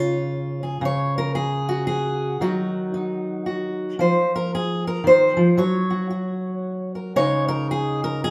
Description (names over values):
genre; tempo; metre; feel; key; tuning
folk, solo fingerstyle acoustic guitar; 114 BPM; 3/4; swing 62% on 8ths; Db major; A4 = 440 Hz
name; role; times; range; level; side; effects
fingerpicked steel-string acoustic guitar; solo; 0.0-8.3 s; Db3 to Db5; -22 LUFS; equal; none
room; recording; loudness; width
wet large studio reverb, RT60 1.2 s; none; -22 LUFS; mono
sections
0.8-8.3 A section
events
none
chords
0.0 Db; 0.8 Db5; 2.4 Ebm; 4.0 F5; 5.6 Gb5; 7.2 Dbsus2